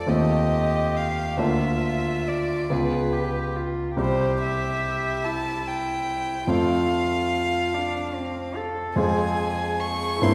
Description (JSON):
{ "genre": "classical, slow romantic movement for piano trio", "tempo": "47 BPM (dotted quarters)", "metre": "6/8", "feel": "uneven beats, rubato", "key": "F major", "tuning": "A4 = 440 Hz", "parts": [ { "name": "warm violin", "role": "melody", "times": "0.0-10.3 s", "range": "Cb5 to Db6", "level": "-30 LUFS", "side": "equal", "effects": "none" }, { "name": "warm cello", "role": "second line", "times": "0.0-10.3 s", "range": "C4 to A4", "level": "-31 LUFS", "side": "equal", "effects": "none" }, { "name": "clear grand piano", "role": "accompaniment", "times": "0.0-10.3 s", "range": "C2 to G4", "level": "-27 LUFS", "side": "equal", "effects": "none" } ], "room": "wet scoring stage reverb, RT60 1.6 s", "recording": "heard from further back in the room", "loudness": "-25 LUFS", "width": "mono", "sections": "0.0-10.3 A section", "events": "none", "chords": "0.1 F7/Eb; 1.4 Bb/D; 2.7 Db7; 4.0 C; 6.5 F; 9.0 Fm" }